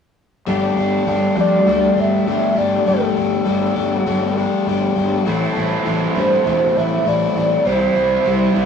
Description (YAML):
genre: rock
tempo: 100 BPM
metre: 4/4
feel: straight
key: unclear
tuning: A4 = 440 Hz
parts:
  - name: biting overdriven guitar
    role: riff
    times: 0.5-8.7 s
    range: A2 to G4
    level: -22 LUFS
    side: right 2 dB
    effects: none
  - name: overdriven electric guitar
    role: riff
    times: 0.5-8.7 s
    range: A2 to G4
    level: -19 LUFS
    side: left 5 dB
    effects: none
  - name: fuzz fingered electric bass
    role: bass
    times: 0.5-8.7 s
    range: E1 to G2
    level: -22 LUFS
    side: right 1 dB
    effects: overdrive
  - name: pure sine lead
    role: melody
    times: 1.4-8.7 s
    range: A4 to E5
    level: -18 LUFS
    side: right 1 dB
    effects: chorus
room: wet small room reverb, RT60 0.6 s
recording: rough rehearsal-room recording, warm saturation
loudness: -15 LUFS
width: side -7 dB against mid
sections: 0.5-8.7 A section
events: none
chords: 0.5 Gsus2; 5.3 Am; 7.7 C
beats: | 0.48 1.08 1.68 2.28 | 2.87 3.47 4.07 4.67 | 5.27 5.86 6.46 7.06 | 7.66 8.26